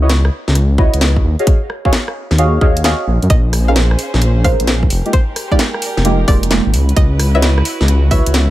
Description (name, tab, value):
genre	UK garage, two-step garage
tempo	131 BPM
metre	4/4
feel	swing 67% on 16ths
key	unclear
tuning	A4 = 438 Hz
part	deep mellow chord stab	stabs	0.0-8.5 s	Ab3 to F5	-19 LUFS	right 1 dB	chorus, phaser, tape echo
part	dark detuned saw bass	bass	0.0-8.5 s	F1 to Gb2	-13 LUFS	equal	none
part	garage drum kit	drums	0.1-8.5 s	hi-hat, rim click, snare drum	-19 LUFS	equal	none
part	electronic kick drum	drums	0.8-8.2 s	none	-13 LUFS	equal	none
part	string-like resonator pluck	melody	3.3-8.5 s	C5 to F5	-23 LUFS	equal	chorus, tape echo
part	dark studio violin section	sustained chords	3.3-8.5 s	Db4 to C5	-26 LUFS	right 2 dB	sidechain pumping
room	little or no reverb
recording	none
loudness	-11 LUFS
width	side -15 dB against mid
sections	0.0-8.5 A section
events	none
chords	0.0 Dbm11; 1.2 Ebm11; 3.3 Bbm11; 4.9 Fm11; 6.7 Dbm11